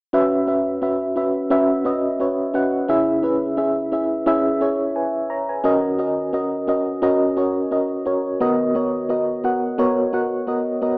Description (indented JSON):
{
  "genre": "pop",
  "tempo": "87 BPM",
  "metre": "4/4",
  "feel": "swing 55% on 16ths",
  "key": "F# mixolydian",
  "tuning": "A4 = 440 Hz",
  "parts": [
    { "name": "mellow FM electric piano", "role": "accompaniment", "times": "0.1-11.0 s", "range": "C#2 to A#5", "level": "-18 LUFS", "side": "equal", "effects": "chorus, tremolo, cassette tape" }
  ],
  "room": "moderate spring reverb, RT60 2.0 s, digital ambience",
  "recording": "home recording on cassette, small speaker sound",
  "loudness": "-18 LUFS",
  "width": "side -32 dB against mid",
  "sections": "0.1-11.0 A section",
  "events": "none",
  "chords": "0.1 F#7sus4; 2.9 C#m; 5.6 D#m7; 8.4 Bmaj7/D#",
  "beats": "| 0.13 0.82 1.51 2.20 | 2.89 3.58 4.27 4.96 | 5.65 6.34 7.03 7.72 | 8.41 9.10 9.79 10.48"
}